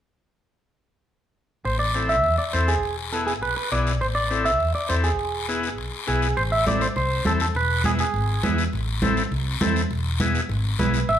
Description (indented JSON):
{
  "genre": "latin, cumbia",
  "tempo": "204 BPM",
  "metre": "4/4",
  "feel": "straight",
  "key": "A harmonic minor",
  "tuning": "A4 = 439 Hz",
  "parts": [
    { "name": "clean electric guitar", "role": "melody", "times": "1.7-8.5, 10.8-11.2 s", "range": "G#4 to E5", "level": "-24 LUFS", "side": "right 1 dB", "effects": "spring reverb" },
    { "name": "mellow fretless electric bass", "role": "bass", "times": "1.7-11.2 s", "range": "E1 to E2", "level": "-25 LUFS", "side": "equal", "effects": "none" },
    { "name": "guiro", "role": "percussion", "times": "1.7-11.2 s", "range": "none", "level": "-33 LUFS", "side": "left 6 dB", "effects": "none" },
    { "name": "combo organ", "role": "accompaniment", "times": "1.9-11.0 s", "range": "B3 to A4", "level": "-27 LUFS", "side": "left 3 dB", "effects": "none" },
    { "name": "congas", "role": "percussion", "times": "6.4-11.2 s", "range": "none", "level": "-27 LUFS", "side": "right 3 dB", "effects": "none" }
  ],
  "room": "moderate large studio reverb, RT60 0.9 s",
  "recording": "band playing live in one room",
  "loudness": "-20 LUFS",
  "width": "side -10 dB against mid",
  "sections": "1.7-6.4 A section; 6.4-11.2 B section",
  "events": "none",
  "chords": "1.7 Am; 2.8 E; 4.0 Am; 5.2 E; 6.4 Am; 7.5 E; 8.7 Am; 9.9 E",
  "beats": "| 1.65 1.95 2.24 2.54 | 2.83 3.13 3.42 3.72 | 4.01 4.31 4.60 4.90 | 5.19 5.49 5.78 6.08 | 6.37 6.66 6.96 7.25 | 7.55 7.84 8.14 8.43 | 8.73 9.02 9.32 9.61 | 9.91 10.20 10.50 10.79 | 11.09"
}